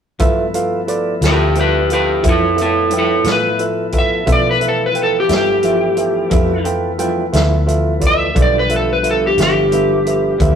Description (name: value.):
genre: slow blues.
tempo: 59 BPM (dotted quarters).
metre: 12/8.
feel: straight.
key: G mixolydian.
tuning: A4 = 442 Hz.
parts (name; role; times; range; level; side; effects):
barky tine electric piano; accompaniment; 0.2-10.6 s; F4 to G5; -20 LUFS; right 3 dB; none.
electric guitar through a small old amp; accompaniment; 0.2-10.6 s; G2 to E4; -25 LUFS; left 1 dB; tremolo.
tonewheel organ; sustained chords; 0.2-10.6 s; D3 to E4; -23 LUFS; left 3 dB; slow rotary speaker.
vintage muted fingered electric bass; bass; 0.2-10.6 s; G1 to B2; -21 LUFS; equal; none.
vintage drum kit; drums; 0.2-10.6 s; hi-hat, kick drum, snare drum; -19 LUFS; equal; none.
electric slide guitar; melody; 1.3-10.6 s; E4 to E5; -15 LUFS; equal; none.
room: moderate stone room reverb, RT60 1.1 s.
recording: rough rehearsal-room recording.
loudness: -13 LUFS.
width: side -8 dB against mid.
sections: 0.2-10.6 A section.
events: none.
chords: 0.2 G13.